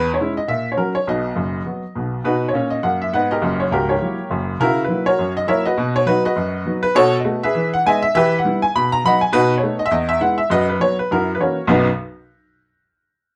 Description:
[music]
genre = jazz, stride piano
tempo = 203 BPM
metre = 4/4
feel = swing 58% on 8ths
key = B major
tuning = A4 = 440 Hz
[part]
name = clear upright piano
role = solo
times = 0.0-11.9 s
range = C#1 to B5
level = -18 LUFS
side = equal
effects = none
[sound]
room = moderate club reverb, RT60 0.5 s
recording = close, detailed microphones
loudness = -19 LUFS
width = mono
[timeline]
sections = 0.0-2.2 A section; 2.2-11.7 A section; 11.7-12.9 B section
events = none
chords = 0.5 F#/A#; 1.1 B; 3.4 F#7b9; 4.6 F#7/C#; 5.8 B; 7.0 B5; 7.5 Emaj7; 8.1 Em; 8.7 B; 9.3 B7; 9.9 E; 10.5 B5/F#; 11.1 F#7; 11.7 B

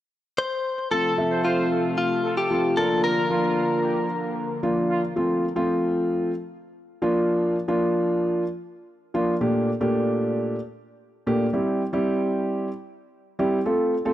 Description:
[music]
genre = pop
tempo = 113 BPM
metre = 4/4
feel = straight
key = unclear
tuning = A4 = 439 Hz
[part]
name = direct-recorded clean electric guitar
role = melody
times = 0.4-4.6 s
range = F4 to C5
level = -24 LUFS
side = left 2 dB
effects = tape echo
[part]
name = warm horn section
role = melody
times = 0.9-5.0 s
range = F4 to C5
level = -32 LUFS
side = right 2 dB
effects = tape echo
[part]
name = dark grand piano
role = accompaniment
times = 0.9-14.1 s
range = Bb2 to E5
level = -22 LUFS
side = equal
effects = none
[part]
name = lush unison pad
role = sustained chords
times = 0.9-5.1 s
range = C3 to Bb4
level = -29 LUFS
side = equal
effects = chorus
[sound]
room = light reverb, small room ambience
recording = dry, gritty hardware recording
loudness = -21 LUFS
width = side -13 dB against mid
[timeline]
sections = 0.9-5.2 A section; 5.2-14.1 B section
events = none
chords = 0.0 N.C.; 0.9 F; 2.8 Bb; 5.2 F; 7.0 Bb; 9.4 Gmadd9/Bb; 11.5 C

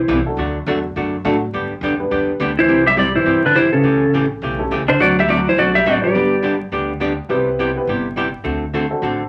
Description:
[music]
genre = country, western swing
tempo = 208 BPM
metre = 4/4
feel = swing 60% on 8ths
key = C major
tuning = A4 = 440 Hz
[part]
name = clean lap steel guitar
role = melody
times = 0.0-0.2, 2.6-6.6 s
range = Db4 to E5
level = -17 LUFS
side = equal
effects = none
[part]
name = hollow-body jazz guitar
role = second line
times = 0.0-0.2, 2.6-6.6 s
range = Db3 to G3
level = -23 LUFS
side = equal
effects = none
[part]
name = upright bass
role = bass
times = 0.0-9.3 s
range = G1 to A2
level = -29 LUFS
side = equal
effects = none
[part]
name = archtop guitar, miked and amplified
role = accompaniment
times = 0.1-9.2 s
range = C3 to B4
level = -23 LUFS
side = equal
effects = none
[part]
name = warm upright piano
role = accompaniment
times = 0.3-9.3 s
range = F#3 to C5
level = -25 LUFS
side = equal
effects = none
[sound]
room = wet small room ambience, RT60 0.5 s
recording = vinyl crackle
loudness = -17 LUFS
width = mono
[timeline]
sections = 0.0-2.7 A section; 2.7-9.3 B section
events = none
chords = 0.4 D; 1.5 G; 2.7 C; 3.8 A7; 5.0 D7; 6.1 G; 7.3 Cmaj7; 8.5 D7

